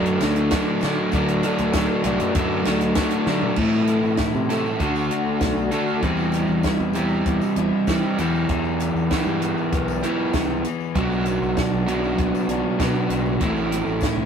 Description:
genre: indie rock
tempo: 98 BPM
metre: 4/4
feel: straight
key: unclear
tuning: A4 = 441 Hz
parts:
  - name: crunchy overdriven guitar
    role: riff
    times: 0.0-14.3 s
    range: A2 to A4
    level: -22 LUFS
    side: right 2 dB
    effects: none
  - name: overdriven electric guitar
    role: riff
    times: 0.0-14.3 s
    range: A2 to F#4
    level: -27 LUFS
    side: left 6 dB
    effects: none
  - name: growling fingered electric bass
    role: bass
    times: 0.0-14.3 s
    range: A1 to E3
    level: -27 LUFS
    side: left 1 dB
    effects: overdrive
  - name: compact cocktail drum kit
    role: drums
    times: 0.1-14.2 s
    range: crash cymbal, hi-hat, kick drum, snare drum, toms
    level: -26 LUFS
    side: right 1 dB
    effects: none
  - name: tambourine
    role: percussion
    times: 0.2-14.2 s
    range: none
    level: -47 LUFS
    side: left 7 dB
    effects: none
room: moderate studio reverb, RT60 0.6 s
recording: rough rehearsal-room recording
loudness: -19 LUFS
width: side -7 dB against mid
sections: 0.0-3.6 A section; 3.6-14.3 B section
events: drum fill 3.3-3.6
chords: 0.0 D; 3.6 Am; 4.8 D; 6.0 C/E; 8.2 Em; 10.9 Bm; 13.4 Am

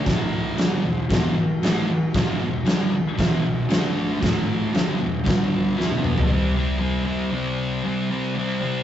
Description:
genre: garage rock duo or trio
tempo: 116 BPM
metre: 4/4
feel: straight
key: unclear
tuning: A4 = 435 Hz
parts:
  - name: thick fuzz guitar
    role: riff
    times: 0.0-8.8 s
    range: E2 to E4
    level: -23 LUFS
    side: equal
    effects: distortion
  - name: oversized low-tuned drum kit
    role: drums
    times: 0.1-6.3 s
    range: crash cymbal, kick drum, snare drum, toms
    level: -22 LUFS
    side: equal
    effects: none
room: moderate studio reverb, RT60 0.6 s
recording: rough rehearsal-room recording, warm saturation, nothing above 7.9 kHz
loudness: -20 LUFS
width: side -10 dB against mid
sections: 0.0-6.3 A section; 6.3-8.8 B section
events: drum fill 5.8-6.3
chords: 0.1 A5; 0.6 E5; 3.7 D5; 4.2 A5; 4.7 E5; 5.3 G5; 5.8 E5; 6.3 C5

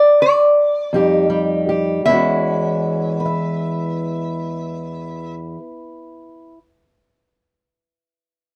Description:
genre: acoustic country blues, solo or duo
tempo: 52 BPM (dotted quarters)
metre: 12/8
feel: straight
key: unclear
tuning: A4 = 440 Hz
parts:
  - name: lap resonator guitar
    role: melody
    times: 0.0-5.3 s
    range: D5 to E5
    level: -16 LUFS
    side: equal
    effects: none
  - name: fingerpicked steel-string acoustic guitar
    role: accompaniment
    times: 0.9-6.6 s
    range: E2 to E5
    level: -21 LUFS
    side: equal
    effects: none
room: light reverb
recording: none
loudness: -18 LUFS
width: mono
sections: 0.0-2.0 A section; 2.0-6.6 B section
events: slowing down 0.0-2.0; stop 0.0-0.9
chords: 0.0 N.C.; 0.9 Fsus2; 2.0 E69

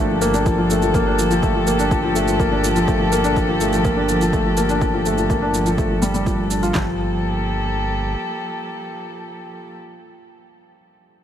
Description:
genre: piano and strings electronica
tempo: 124 BPM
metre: 4/4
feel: straight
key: G minor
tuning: A4 = 440 Hz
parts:
  - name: dark string quartet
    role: sustained chords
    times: 0.0-9.8 s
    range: F3 to A4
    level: -24 LUFS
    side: left 1 dB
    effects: none
  - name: felt-muted upright piano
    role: riff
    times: 0.0-11.2 s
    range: F3 to F4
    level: -20 LUFS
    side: left 1 dB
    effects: tape echo
  - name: round analog bass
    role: bass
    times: 0.0-8.2 s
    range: G1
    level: -26 LUFS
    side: right 1 dB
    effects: tube saturation, sidechain pumping
  - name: shaker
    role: drums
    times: 0.2-6.7 s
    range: none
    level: -30 LUFS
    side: right 6 dB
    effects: overdrive, studio reverb
  - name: deep house drum kit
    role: drums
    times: 0.5-6.9 s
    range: handclaps, kick drum, snare drum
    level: -24 LUFS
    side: right 1 dB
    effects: overdrive, studio reverb
room: light reverb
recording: none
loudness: -16 LUFS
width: side -10 dB against mid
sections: 0.0-6.8 A section; 6.8-10.6 B section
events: none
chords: 0.0 Gm9

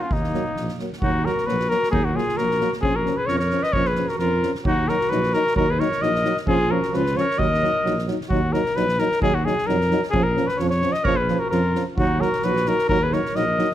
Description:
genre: balkan folk, Balkan brass band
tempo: 131 BPM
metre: 2/4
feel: swing 55% on 16ths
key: Eb minor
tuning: A4 = 440 Hz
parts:
  - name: clear flugelhorn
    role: melody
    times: 0.0-13.7 s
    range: Eb4 to Eb5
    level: -22 LUFS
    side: left 2 dB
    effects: none
  - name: clear clarinet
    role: second line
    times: 0.0-8.1, 11.0-13.7 s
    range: Bb3 to Cb5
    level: -29 LUFS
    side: right 6 dB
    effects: none
  - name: dark tuba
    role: bass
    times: 0.1-13.6 s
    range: Bb1 to F2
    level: -26 LUFS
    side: equal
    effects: none
  - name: soft-mallet drum kit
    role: percussion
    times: 0.1-13.7 s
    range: kick drum, snare drum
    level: -29 LUFS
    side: equal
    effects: none
  - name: mellow euphonium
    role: accompaniment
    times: 0.3-13.7 s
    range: Bb3 to Eb4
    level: -29 LUFS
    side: left 7 dB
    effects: none
  - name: warm euphonium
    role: accompaniment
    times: 0.3-13.7 s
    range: F3 to Gb3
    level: -28 LUFS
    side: right 6 dB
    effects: none
room: light reverb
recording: none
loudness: -19 LUFS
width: side -12 dB against mid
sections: 0.0-1.0 A section; 1.0-8.3 B section; 8.3-13.7 B section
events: none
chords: 0.0 Ebm; 2.8 Bbm; 4.7 Ebm; 6.5 Bbm; 7.4 Ebm; 10.1 Bbm; 12.0 Ebm

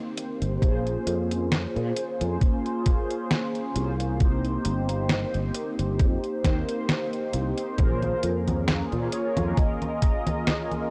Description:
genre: vaporwave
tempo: 67 BPM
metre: 4/4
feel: swing 54% on 16ths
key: Bb dorian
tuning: A4 = 440 Hz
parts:
  - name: mellow synth brass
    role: accompaniment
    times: 0.0-10.9 s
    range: Bb3 to C5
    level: -32 LUFS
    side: equal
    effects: phaser, subtle chorus, analog delay
  - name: detuned 8-bit digital drum machine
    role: drums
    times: 0.2-10.9 s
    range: congas, hi-hat, snare drum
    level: -31 LUFS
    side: equal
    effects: small room ambience
  - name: sustaining fretless electric bass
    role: bass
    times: 0.4-9.5 s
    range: G1 to Bb2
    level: -30 LUFS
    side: equal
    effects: ensemble chorus
  - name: electronic kick drum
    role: drums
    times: 0.6-10.2 s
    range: none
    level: -24 LUFS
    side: equal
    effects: small room ambience
  - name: warm velvety synth lead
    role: melody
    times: 7.8-10.9 s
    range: C5 to Eb5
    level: -34 LUFS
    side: equal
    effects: chorus, tape echo
room: little or no reverb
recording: dry, gritty hardware recording, transformer saturation, cassette tape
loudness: -26 LUFS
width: mono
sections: 0.0-10.9 A section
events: none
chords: 0.0 Cm7; 0.6 Bbm9; 4.2 Cm7; 7.8 Bbm9

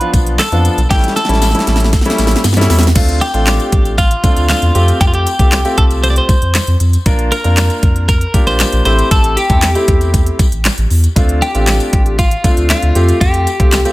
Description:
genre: dance-pop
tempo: 117 BPM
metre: 4/4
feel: straight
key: unclear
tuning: A4 = 439 Hz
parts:
  - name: twelve-string electric guitar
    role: melody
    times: 0.0-13.9 s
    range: F4 to D5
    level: -17 LUFS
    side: left 1 dB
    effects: spring reverb
  - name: warm concert grand piano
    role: accompaniment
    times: 0.0-13.9 s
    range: F3 to Bb4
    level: -18 LUFS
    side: left 1 dB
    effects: sidechain pumping
  - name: pop drum kit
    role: drums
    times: 0.0-13.9 s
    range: crash cymbal, handclaps, hi-hat, kick drum, snare drum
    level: -13 LUFS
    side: equal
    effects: none
  - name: warm sub bass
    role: bass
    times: 0.1-13.8 s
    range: A1 to G2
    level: -14 LUFS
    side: equal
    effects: sidechain pumping
  - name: tambourine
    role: percussion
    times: 0.1-13.9 s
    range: none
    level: -28 LUFS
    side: left 9 dB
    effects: none
room: little or no reverb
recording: none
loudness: -10 LUFS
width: side -18 dB against mid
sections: 0.0-3.0 A section; 3.0-13.9 B section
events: drum fill 0.9-3.0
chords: 0.0 Bdim; 0.9 A7; 3.0 Dm7; 4.8 Fadd9; 7.1 Bb; 8.9 Am7; 11.2 Dm7; 13.0 Fadd9

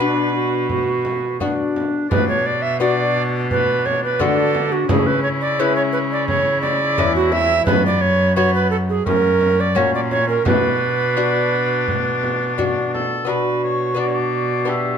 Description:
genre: classical, renaissance-style consort dance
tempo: 86 BPM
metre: 4/4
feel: straight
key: B dorian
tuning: A4 = 440 Hz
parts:
  - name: warm oboe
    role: melody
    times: 0.0-15.0 s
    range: B3 to E5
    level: -25 LUFS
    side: left 3 dB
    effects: none
  - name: bass recorder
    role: second line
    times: 0.0-15.0 s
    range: D4 to E5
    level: -19 LUFS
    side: right 3 dB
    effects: none
  - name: lute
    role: accompaniment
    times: 0.0-15.0 s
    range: E2 to G4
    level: -23 LUFS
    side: left 6 dB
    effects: none
  - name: rich cello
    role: bass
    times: 0.0-15.0 s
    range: E2 to D3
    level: -23 LUFS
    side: right 1 dB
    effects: none
  - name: frame drum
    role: percussion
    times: 0.7-13.3 s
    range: none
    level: -24 LUFS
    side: equal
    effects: none
room: moderate stone room reverb, RT60 1.3 s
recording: none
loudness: -16 LUFS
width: side -7 dB against mid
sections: 0.0-2.1 A section; 2.1-13.3 A section; 13.3-15.0 B section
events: none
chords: 0.0 Bm; 4.9 C#m; 7.7 F#sus4; 9.1 F#; 10.5 Bm

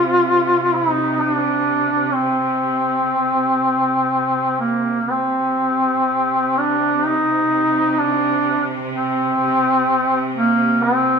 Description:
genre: caucasian folk, Caucasian lament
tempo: free time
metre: none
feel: none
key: C minor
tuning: A4 = 440 Hz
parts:
  - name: clear duduk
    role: melody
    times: 0.0-11.2 s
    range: Bb3 to F4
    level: -16 LUFS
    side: equal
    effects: none
  - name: bright studio cello section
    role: drone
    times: 0.0-11.2 s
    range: C3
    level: -25 LUFS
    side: right 3 dB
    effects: none
room: wet stone room reverb, RT60 1.3 s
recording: band playing live in one room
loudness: -16 LUFS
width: side -6 dB against mid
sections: 0.0-5.1 A section; 5.1-11.2 B section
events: none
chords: none

